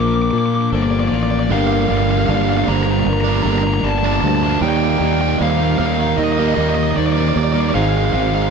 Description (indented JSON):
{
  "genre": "post-rock",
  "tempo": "77 BPM",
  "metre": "4/4",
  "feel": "straight",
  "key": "G minor",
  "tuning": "A4 = 440 Hz",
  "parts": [
    { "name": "dark smooth lead guitar", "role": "melody", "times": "0.0-8.5 s", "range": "D5 to D6", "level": "-22 LUFS", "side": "left 1 dB", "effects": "overdrive, tape echo" },
    { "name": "pedal steel guitar", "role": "sustained chords", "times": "0.0-8.5 s", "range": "Bb3 to A5", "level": "-34 LUFS", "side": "right 1 dB", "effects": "none" },
    { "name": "twelve-string electric guitar", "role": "arpeggios", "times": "0.0-1.5 s", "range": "Bb3 to A4", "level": "-28 LUFS", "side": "left 6 dB", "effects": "analog chorus, tape echo" },
    { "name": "vibraphone with soft mallets", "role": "arpeggios", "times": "0.0-8.5 s", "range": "Bb4 to D5", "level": "-26 LUFS", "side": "right 7 dB", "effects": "tape echo" },
    { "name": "distorted electric guitar", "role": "riff", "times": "0.0-8.5 s", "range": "G2 to Eb4", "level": "-21 LUFS", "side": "left 12 dB", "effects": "distortion" },
    { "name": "fuzz fingered electric bass", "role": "bass", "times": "0.0-8.5 s", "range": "G1 to Bb2", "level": "-19 LUFS", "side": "right 1 dB", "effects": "overdrive" },
    { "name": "fuzz guitar", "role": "riff", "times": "1.5-8.5 s", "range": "G2 to Eb4", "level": "-20 LUFS", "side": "right 15 dB", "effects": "distortion" }
  ],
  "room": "digital ambience",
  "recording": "dark, warm production",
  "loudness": "-14 LUFS",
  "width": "side -5 dB against mid",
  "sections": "0.0-1.5 A section; 1.5-8.5 B section",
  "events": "build-up 0.0-1.5",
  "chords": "0.0 Bbmaj7; 1.5 Gm7; 4.6 Ebmaj7; 7.7 Ab6"
}